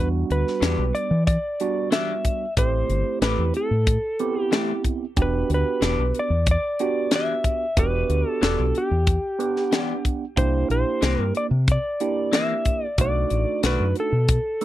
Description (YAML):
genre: straight-eighth soul blues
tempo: 92 BPM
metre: 4/4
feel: straight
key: E minor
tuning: A4 = 440 Hz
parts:
  - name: electric slide guitar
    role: melody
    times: 0.0-14.6 s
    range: G4 to E5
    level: -25 LUFS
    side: equal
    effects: none
  - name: overdriven tine electric piano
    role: accompaniment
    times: 0.0-14.6 s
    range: G3 to F#5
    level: -27 LUFS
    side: right 7 dB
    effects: phaser
  - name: deep dub fingered electric bass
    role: bass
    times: 0.0-14.4 s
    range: E1 to E3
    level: -22 LUFS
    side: equal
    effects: none
  - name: tight funk drum kit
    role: drums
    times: 0.3-14.6 s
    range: hi-hat, kick drum, snare drum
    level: -23 LUFS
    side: left 1 dB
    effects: none
  - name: electric guitar through a small old amp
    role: stabs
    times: 0.6-13.8 s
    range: D#3 to G4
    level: -28 LUFS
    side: left 5 dB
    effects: phaser
room: little or no reverb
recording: dry, close 1970s-style studio recording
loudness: -20 LUFS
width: side -14 dB against mid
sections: 0.0-14.6 A section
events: none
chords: 0.0 Em7; 2.6 Am7; 5.2 Em7; 10.4 C7; 13.0 B7#9